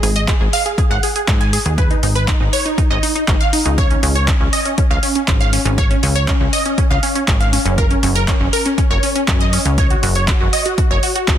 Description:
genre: progressive house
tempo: 120 BPM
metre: 4/4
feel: straight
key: unclear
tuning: A4 = 440 Hz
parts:
  - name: wide unison pluck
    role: arpeggios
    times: 0.0-11.4 s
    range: C#4 to G#5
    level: -18 LUFS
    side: right 1 dB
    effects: phaser, sidechain pumping, digital delay
  - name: plucky analog bass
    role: bass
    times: 0.0-11.4 s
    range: F#1 to G#2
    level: -18 LUFS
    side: equal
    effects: sidechain pumping
  - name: deep house drum kit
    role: drums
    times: 0.0-11.4 s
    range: handclaps, hi-hat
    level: -22 LUFS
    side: equal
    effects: overdrive
  - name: electronic kick drum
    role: drums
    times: 0.3-11.4 s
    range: none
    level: -17 LUFS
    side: equal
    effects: overdrive
room: little or no reverb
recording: dense, heavily limited modern master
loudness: -13 LUFS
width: side -10 dB against mid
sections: 0.0-11.4 A section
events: none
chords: 0.0 G#5; 3.8 C#5; 7.8 F#5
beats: 0.28 0.78 1.28 | 1.78 2.28 2.78 3.28 | 3.78 4.28 4.78 5.28 | 5.78 6.28 6.78 7.28 | 7.78 8.28 8.78 9.28 | 9.78 10.28 10.78 11.28

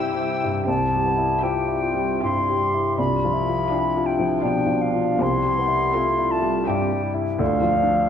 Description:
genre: classical, romantic movement for piano and orchestra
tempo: 80 BPM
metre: 3/4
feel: uneven beats, rubato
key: C major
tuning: A4 = 440 Hz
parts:
  - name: clear concert grand piano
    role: melody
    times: 0.0-8.1 s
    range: C2 to E5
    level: -23 LUFS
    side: left 2 dB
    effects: none
  - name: muted studio violin section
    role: melody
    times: 0.0-7.2 s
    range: E5 to E6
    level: -40 LUFS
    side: left 1 dB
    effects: none
  - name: concert flute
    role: second line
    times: 0.0-8.1 s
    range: F5 to C6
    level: -23 LUFS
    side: left 1 dB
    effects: none
  - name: muted studio violin section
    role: second line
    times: 0.0-7.2 s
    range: F4 to G4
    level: -40 LUFS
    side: left 1 dB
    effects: none
  - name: muted studio viola section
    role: accompaniment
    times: 0.0-7.2 s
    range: C4 to E4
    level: -37 LUFS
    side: equal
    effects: none
  - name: muted studio cello section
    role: bass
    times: 0.0-8.0 s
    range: C3 to D3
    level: -34 LUFS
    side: right 3 dB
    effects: none
  - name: mellow clarinet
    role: second line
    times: 0.7-7.9 s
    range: D4 to G4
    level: -31 LUFS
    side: left 2 dB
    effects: none
  - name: mellow bassoon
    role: accompaniment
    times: 0.7-8.1 s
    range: G3 to E4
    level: -28 LUFS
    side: right 3 dB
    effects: none
room: moderate scoring stage reverb, RT60 1.9 s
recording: minimal, uncompressed stereo recording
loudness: -19 LUFS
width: side -8 dB against mid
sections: 0.7-8.1 A section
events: none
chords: 0.0 C; 3.0 Bdim/C; 5.2 C; 7.4 Bdim/D (rootless)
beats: | 0.67 1.43 2.24 | 2.98 3.71 4.43 | 5.21 5.95 6.68 | 7.40

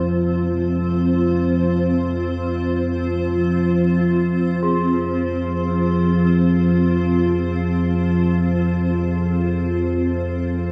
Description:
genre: dark ambient drone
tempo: free time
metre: none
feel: none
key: F minor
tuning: A4 = 439 Hz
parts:
  - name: granular cloud pad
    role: sustained chords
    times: 0.0-10.7 s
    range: C4 to C5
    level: -24 LUFS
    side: equal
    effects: built-in reverb
  - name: analog drone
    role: drone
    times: 0.0-10.7 s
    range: F2 to F3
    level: -22 LUFS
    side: equal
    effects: chorus
  - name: bronze singing bowl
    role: texture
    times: 0.0-10.7 s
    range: Ab3 to Ab4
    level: -35 LUFS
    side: equal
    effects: none
room: moderate plate reverb, RT60 2.9 s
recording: dreamy mix soaked in reverb, small room ambience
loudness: -19 LUFS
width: mono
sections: 0.0-10.7 A section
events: none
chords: 0.0 F5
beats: free time

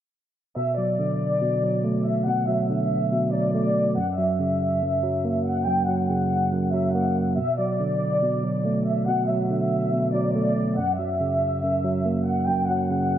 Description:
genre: hip hop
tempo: 141 BPM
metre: 4/4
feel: half-time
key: B minor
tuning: A4 = 440 Hz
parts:
  - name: dark studio violin section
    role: melody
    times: 0.6-13.2 s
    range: D5 to G5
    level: -25 LUFS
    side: left 1 dB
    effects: low-pass filter
  - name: tine electric piano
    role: accompaniment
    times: 0.6-13.2 s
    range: F#2 to A#3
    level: -23 LUFS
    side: right 1 dB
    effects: low-pass filter
room: moderate lush hall reverb, RT60 2.7 s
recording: low-pass filter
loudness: -21 LUFS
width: side -10 dB against mid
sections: 0.6-13.2 A section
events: none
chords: 0.6 Bm7; 4.0 F#; 7.4 Bm7; 10.8 F#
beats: | 0.56 0.99 1.42 1.84 | 2.27 2.69 3.12 3.54 | 3.97 4.39 4.82 5.25 | 5.67 6.10 6.52 6.95 | 7.37 7.80 8.22 8.65 | 9.08 9.50 9.93 10.35 | 10.78 11.20 11.63 12.05 | 12.48 12.91

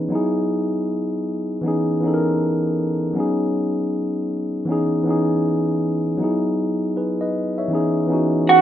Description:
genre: hip hop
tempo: 79 BPM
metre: 4/4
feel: swing 62% on 16ths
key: unclear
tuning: A4 = 441 Hz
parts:
  - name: mellow tine electric piano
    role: accompaniment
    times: 0.0-8.6 s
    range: E3 to E5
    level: -19 LUFS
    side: equal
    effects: cassette tape, plate reverb
  - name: electric guitar through a small old amp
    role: melody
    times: 8.5-8.6 s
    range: F#4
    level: -8 LUFS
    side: right 5 dB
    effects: spring reverb
room: wet studio reverb, RT60 0.5 s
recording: rough home demo mix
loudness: -19 LUFS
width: side -10 dB against mid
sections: 0.0-8.6 A section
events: none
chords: 0.1 Emaj9; 1.6 C#m7; 3.2 B69; 4.7 C#m7; 6.2 Emaj9; 7.7 C#m7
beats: | 0.12 0.88 1.64 2.40 | 3.16 3.92 4.67 5.43 | 6.19 6.95 7.71 8.47

